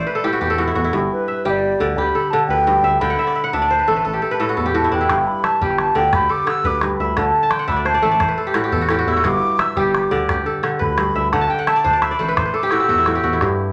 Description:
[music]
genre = west african traditional, West African string and xylophone music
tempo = 116 BPM (dotted quarters)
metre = 12/8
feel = straight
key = G major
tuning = A4 = 439 Hz
[part]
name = breathy mellow wooden flute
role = melody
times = 0.0-13.4 s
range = B4 to E6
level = -21 LUFS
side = equal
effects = none
[part]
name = kora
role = arpeggios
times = 0.0-13.7 s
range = G2 to A5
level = -22 LUFS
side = equal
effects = none
[part]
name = rubbery square bass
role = bass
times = 0.0-13.7 s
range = G1 to G2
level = -28 LUFS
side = equal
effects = none
[part]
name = calabash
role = percussion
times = 5.1-13.5 s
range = none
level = -26 LUFS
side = equal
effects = none
[sound]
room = moderate large studio reverb, RT60 0.9 s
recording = none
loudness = -18 LUFS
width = mono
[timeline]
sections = 0.0-13.4 A section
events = kora fill 0.0-0.9, 3.0-5.1, 7.4-9.2, 11.3-13.4; flute solo 0.0-13.4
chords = 0.0 A5; 0.9 G; 3.0 D5; 4.0 A5; 5.1 G; 7.2 D5; 9.2 G; 11.3 D5

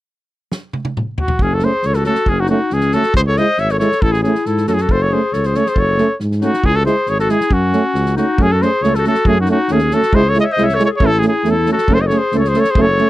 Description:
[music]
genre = balkan folk, Balkan brass band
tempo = 137 BPM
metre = 2/4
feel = straight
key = F# dorian sharp4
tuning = A4 = 440 Hz
[part]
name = natural country drum kit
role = percussion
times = 0.5-13.0 s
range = kick drum, snare drum, toms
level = -20 LUFS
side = equal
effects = none
[part]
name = warm trumpet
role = melody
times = 1.2-13.1 s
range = F#4 to E5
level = -17 LUFS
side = equal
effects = none
[part]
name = warm clarinet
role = second line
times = 1.4-13.1 s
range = C#4 to C#5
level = -21 LUFS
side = left 7 dB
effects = none
[part]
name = mellow tuba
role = bass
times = 1.4-13.0 s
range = F#1 to G#2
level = -18 LUFS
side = equal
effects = tube saturation
[part]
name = mellow euphonium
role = accompaniment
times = 1.6-13.1 s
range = G#3 to A3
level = -18 LUFS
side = right 4 dB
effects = none
[part]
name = mellow trombone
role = accompaniment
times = 1.6-13.1 s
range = C#4 to E4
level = -23 LUFS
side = left 4 dB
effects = none
[sound]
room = light reverb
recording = dry, close 1970s-style studio recording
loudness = -13 LUFS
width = side -15 dB against mid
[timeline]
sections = 1.4-8.4 A section; 8.4-13.1 A section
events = drum fill 0.5-1.4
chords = 0.5 N.C.; 1.4 F#m; 3.1 C#m; 4.0 A; 4.9 F#m; 6.6 C#m; 7.5 F#m; 10.1 C#m; 11.0 A; 11.9 F#m

